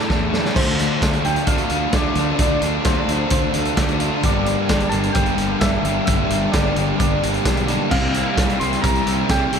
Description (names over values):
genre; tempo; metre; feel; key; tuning
rock, shoegaze and dream pop; 130 BPM; 4/4; straight; D minor; A4 = 444 Hz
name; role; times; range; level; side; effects
soft struck synth lead; melody; 0.0-9.6 s; C5 to C6; -26 LUFS; equal; chorus, tremolo, slapback echo
distorted electric guitar; riff; 0.0-9.6 s; G2 to E4; -26 LUFS; right 1 dB; distortion
overdriven electric guitar; riff; 0.0-9.6 s; G2 to A4; -25 LUFS; right 12 dB; reverse reverb
thick fuzz guitar; riff; 0.0-9.6 s; G2 to D4; -23 LUFS; left 10 dB; distortion, analog chorus
fuzz fingered electric bass; bass; 0.1-9.6 s; G1 to E2; -25 LUFS; right 1 dB; overdrive
loose indie drum kit; drums; 0.1-9.6 s; crash cymbal, hi-hat, kick drum, snare drum; -22 LUFS; equal; none
room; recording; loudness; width
light reverb, small room ambience; none; -16 LUFS; side -7 dB against mid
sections
0.6-9.6 A section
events
drum fill 0.0-0.6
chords
0.0 Asus4; 0.6 Dm7; 4.2 Gm; 7.9 C7sus4